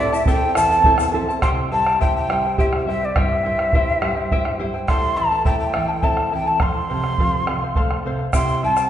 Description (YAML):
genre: andean folk, Andean ensemble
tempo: 70 BPM (dotted quarters)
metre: 6/8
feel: straight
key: unclear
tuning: A4 = 440 Hz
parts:
  - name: breathy quena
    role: melody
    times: 0.0-8.9 s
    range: D5 to C6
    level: -20 LUFS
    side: equal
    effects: none
  - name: charango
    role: accompaniment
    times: 0.0-8.9 s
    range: E4 to A5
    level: -26 LUFS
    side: left 2 dB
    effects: none
  - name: nylon-string guitar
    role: accompaniment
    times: 0.0-8.9 s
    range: E2 to E5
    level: -26 LUFS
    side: right 2 dB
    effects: none
  - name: tube shaker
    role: percussion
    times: 0.1-1.4, 8.3-8.9 s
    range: none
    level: -37 LUFS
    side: left 7 dB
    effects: none
  - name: bombo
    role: percussion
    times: 0.3-8.9 s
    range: none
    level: -22 LUFS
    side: right 1 dB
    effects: none
room: wet recital hall reverb, RT60 1.6 s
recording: recorded in a church or concert hall, nothing above 10.5 kHz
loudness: -17 LUFS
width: side -10 dB against mid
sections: 0.0-1.4 A section; 1.4-8.9 B section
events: nylon-string guitar fill 4.0-4.9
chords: 0.0 Am; 1.4 C; 4.9 Am; 6.6 F; 8.3 C